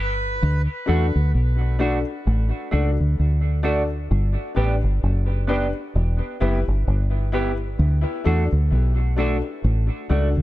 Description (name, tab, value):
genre	reggae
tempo	65 BPM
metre	4/4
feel	swing 58% on 16ths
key	D major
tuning	A4 = 440 Hz
part	semi-hollow electric guitar	accompaniment	0.0-10.3 s	A3 to G4	-29 LUFS	right 3 dB	lush chorus, high-pass filter, tape echo
part	warm upright piano	stabs	0.0-10.3 s	D4 to B4	-28 LUFS	left 5 dB	high-pass filter, tape echo
part	deep dub fingered electric bass	bass	0.0-10.4 s	E1 to E2	-19 LUFS	equal	none
room	small room ambience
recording	echo-heavy mix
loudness	-19 LUFS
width	side -16 dB against mid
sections	0.4-10.4 A section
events	none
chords	0.4 D; 4.1 G; 6.0 Em; 7.8 D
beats	| 0.42 1.34 2.26 3.18 | 4.11 5.03 5.95 6.88 | 7.80 8.72 9.64